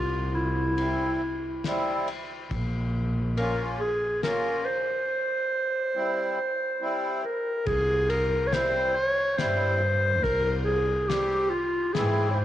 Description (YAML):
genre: klezmer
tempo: 70 BPM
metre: 3/4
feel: straight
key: C phrygian dominant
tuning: A4 = 441 Hz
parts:
  - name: mellow clarinet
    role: melody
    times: 0.0-12.4 s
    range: E4 to Db5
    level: -26 LUFS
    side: equal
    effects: none
  - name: rich double bass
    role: bass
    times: 0.0-12.4 s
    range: Bb1 to Ab2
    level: -30 LUFS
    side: equal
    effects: none
  - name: accordion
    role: accompaniment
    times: 0.8-12.4 s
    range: E3 to G4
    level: -32 LUFS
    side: left 1 dB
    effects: light tremolo tuning
  - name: cloth-damped thuddy drum kit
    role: drums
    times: 0.8-12.1 s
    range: kick drum, ride cymbal, snare drum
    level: -37 LUFS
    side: left 4 dB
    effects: none
room: moderate echo chamber reverb, RT60 2.7 s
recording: 1960s-style stereo, lossy compression artefacts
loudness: -24 LUFS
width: side -12 dB against mid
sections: 0.0-7.7 A section; 7.7-12.4 B section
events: none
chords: 0.0 C; 2.5 Bbm; 5.1 C